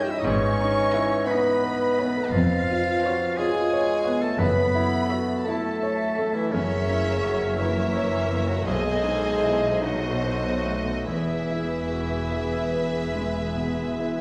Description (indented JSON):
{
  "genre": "classical, romantic movement for piano and orchestra",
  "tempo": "47-60 BPM (dotted quarters)",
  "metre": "12/8",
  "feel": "rubato",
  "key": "E major",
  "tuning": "A4 = 440 Hz",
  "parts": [
    { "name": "clear concert grand piano", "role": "melody", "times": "0.0-14.2 s", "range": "B1 to C#5", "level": "-30 LUFS", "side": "equal", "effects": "none" },
    { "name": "rich chamber violin section", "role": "melody", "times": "0.0-14.2 s", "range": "D#5 to E#5", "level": "-38 LUFS", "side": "equal", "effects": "none" },
    { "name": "bright oboe", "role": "second line", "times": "0.0-14.2 s", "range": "C#4 to G5", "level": "-36 LUFS", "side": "equal", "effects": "none" },
    { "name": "dark clarinet", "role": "second line", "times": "0.0-14.2 s", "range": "G#4 to C#5", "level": "-37 LUFS", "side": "equal", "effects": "none" },
    { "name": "flute section", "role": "second line", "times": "0.0-14.2 s", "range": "C#5 to E5", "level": "-40 LUFS", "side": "equal", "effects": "none" },
    { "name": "warm symphonic violin section", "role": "second line", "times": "0.0-14.2 s", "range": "C#5 to G6", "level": "-39 LUFS", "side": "equal", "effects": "none" },
    { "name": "dark bassoon", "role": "accompaniment", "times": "0.0-14.2 s", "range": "C#3 to G4", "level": "-30 LUFS", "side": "equal", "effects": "none" },
    { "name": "warm chamber viola section", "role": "accompaniment", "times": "0.0-14.2 s", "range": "G#4 to C#5", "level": "-38 LUFS", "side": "equal", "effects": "none" },
    { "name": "mellow French horn section", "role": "sustained chords", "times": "0.0-14.2 s", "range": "C#3 to E4", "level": "-35 LUFS", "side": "equal", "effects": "none" },
    { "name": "warm chamber cello section", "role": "bass", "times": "0.2-14.2 s", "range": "E2 to B2", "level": "-35 LUFS", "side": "equal", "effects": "none" },
    { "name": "rich studio double bass section", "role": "bass", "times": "0.3-14.2 s", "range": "E1 to B1", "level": "-34 LUFS", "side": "equal", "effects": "none" }
  ],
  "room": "wet recital hall reverb, RT60 1.3 s",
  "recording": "recorded in a church or concert hall",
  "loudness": "-24 LUFS",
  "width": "mono",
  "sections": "0.0-14.2 A section",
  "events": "none",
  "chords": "0.2 G#m; 2.3 C#7/E#; 4.4 F#m7; 6.5 F#7; 8.7 B7b9; 11.1 E",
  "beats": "0.25 1.27 | 2.32 3.38 4.40 5.45 | 6.52 7.58 8.67 9.83 | 11.06 12.32 13.55"
}